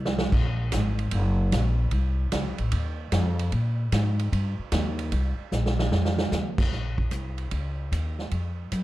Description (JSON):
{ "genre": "jazz, big band swing", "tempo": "150 BPM", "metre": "4/4", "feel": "swing 66% on 8ths", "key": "Bb minor", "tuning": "A4 = 441 Hz", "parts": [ { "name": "upright bass", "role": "bass", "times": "0.0-8.8 s", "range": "Gb1 to Bb2", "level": "-25 LUFS", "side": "equal", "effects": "none" }, { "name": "swinging big-band drum kit", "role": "drums", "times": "0.1-8.8 s", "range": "crash cymbal, hi-hat, kick drum, ride cymbal, snare drum", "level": "-28 LUFS", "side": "right 1 dB", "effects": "none" } ], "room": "little or no reverb", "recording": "dark, warm production", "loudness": "-24 LUFS", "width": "side -16 dB against mid", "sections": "0.0-6.7 A section; 6.7-8.8 B section", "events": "drum fill 0.0-0.3, 5.5-6.3", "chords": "none" }